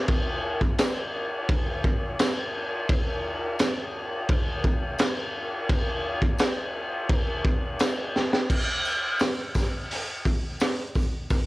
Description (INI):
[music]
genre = rock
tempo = 86 BPM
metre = 4/4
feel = straight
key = none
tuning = none
[part]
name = raw garage drum kit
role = drums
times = 0.1-11.5 s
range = crash cymbal, hi-hat, kick drum, snare drum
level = -24 LUFS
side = equal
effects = none
[part]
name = tambourine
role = percussion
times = 0.8-11.5 s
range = none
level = -44 LUFS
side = left 5 dB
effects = none
[sound]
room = little or no reverb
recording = home recording on cassette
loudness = -24 LUFS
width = side -20 dB against mid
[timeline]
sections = 0.0-8.5 A section; 8.5-11.5 B section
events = drum fill 8.1-8.5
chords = none